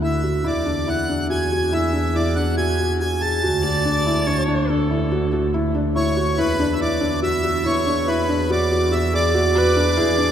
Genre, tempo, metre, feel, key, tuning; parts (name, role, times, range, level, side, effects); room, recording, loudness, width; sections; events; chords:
contemporary instrumental, chamber music in an uneven meter; 142 BPM; 7/4; straight; A4 = 440 Hz
accordion; melody; 0.0-10.3 s; B4 to A5; -23 LUFS; right 1 dB
felt-muted upright piano; arpeggios; 0.0-10.3 s; D4 to G#4; -22 LUFS; left 1 dB
rich double bass; bass; 0.0-10.3 s; D2 to E2; -23 LUFS; right 1 dB
warm viola; second line; 3.6-10.3 s; G#4 to D5; -26 LUFS; right 1 dB
wet cathedral reverb, RT60 5.6 s; recorded in a church or concert hall; -18 LUFS; side -9 dB against mid
0.0-10.3 A section
0.4 E9; 3.4 Dmaj7; 6.4 E7sus2